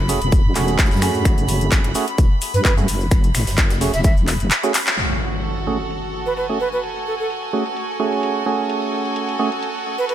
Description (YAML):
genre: bass house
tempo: 129 BPM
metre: 4/4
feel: swing 54% on 16ths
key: F# minor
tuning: A4 = 441 Hz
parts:
  - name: wobble bass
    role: bass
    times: 0.0-4.5 s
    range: E1 to F#2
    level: -21 LUFS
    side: equal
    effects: chorus, sidechain pumping
  - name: rich chamber string section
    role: texture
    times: 0.0-10.1 s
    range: F#4 to B5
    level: -27 LUFS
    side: right 2 dB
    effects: sidechain pumping
  - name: percussive organ stab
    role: stabs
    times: 0.1-9.5 s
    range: A3 to G#4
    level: -23 LUFS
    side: right 4 dB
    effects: chorus, sidechain pumping, ping-pong delay
  - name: big-room dance drum kit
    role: drums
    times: 0.1-10.1 s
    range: finger snaps, handclaps, hi-hat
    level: -22 LUFS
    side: left 1 dB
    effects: low-pass filter on hats, low-pass filter on snare
  - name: oversized low-tuned drum kit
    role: drums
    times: 0.1-4.9 s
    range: hi-hat, shaker, snare drum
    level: -34 LUFS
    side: right 1 dB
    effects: none
  - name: cabasa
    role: percussion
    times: 0.1-5.0 s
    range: none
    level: -33 LUFS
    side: left 3 dB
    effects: none
  - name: electronic kick drum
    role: drums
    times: 0.3-4.1 s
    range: none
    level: -16 LUFS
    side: equal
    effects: none
  - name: breathy bright jazz flute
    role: melody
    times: 2.5-10.1 s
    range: A4 to E5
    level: -25 LUFS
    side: right 2 dB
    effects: ping-pong delay
  - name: impact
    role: sound effects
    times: 5.0-6.8 s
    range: none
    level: -26 LUFS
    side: equal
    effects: none
room: light reverb, small room ambience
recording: none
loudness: -17 LUFS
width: side -11 dB against mid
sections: 0.0-5.0 A section; 5.0-10.1 B section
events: drum fill 4.7; band accent 4.9; impact 5.0-6.8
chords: 0.0 F#madd9